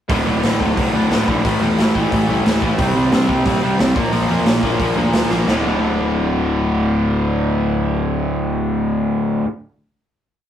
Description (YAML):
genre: punk rock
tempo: 179 BPM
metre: 4/4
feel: straight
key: D minor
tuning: A4 = 436 Hz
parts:
  - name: cranked stack guitar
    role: riff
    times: 0.1-9.5 s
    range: D2 to C4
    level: -21 LUFS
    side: right 5 dB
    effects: overdrive
  - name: overdriven electric guitar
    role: riff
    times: 0.1-9.5 s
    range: D2 to C4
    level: -20 LUFS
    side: left 4 dB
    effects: none
  - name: raw garage guitar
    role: riff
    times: 0.1-9.5 s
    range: D2 to C4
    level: -24 LUFS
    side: right 1 dB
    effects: overdrive
  - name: fuzz picked electric bass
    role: bass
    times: 0.1-9.4 s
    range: D1 to C3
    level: -24 LUFS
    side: equal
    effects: overdrive
  - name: raw garage drum kit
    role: drums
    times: 0.1-5.6 s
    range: hi-hat, kick drum, snare drum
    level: -21 LUFS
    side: equal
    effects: none
room: moderate small room reverb, RT60 0.5 s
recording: rough rehearsal-room recording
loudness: -15 LUFS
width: side -10 dB against mid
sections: 0.1-5.5 riff; 5.5-8.2 final chord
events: drum fill 5.3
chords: 0.1 D5; 1.4 A5; 2.8 C5; 4.0 Bb; 5.5 D5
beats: | 0.10 0.43 0.77 1.11 | 1.45 1.78 2.12 2.45 | 2.79 3.12 3.46 3.80 | 4.13 4.47 4.80 5.14 | 5.47 5.81 6.14 6.48 | 6.82 7.15 7.49 7.82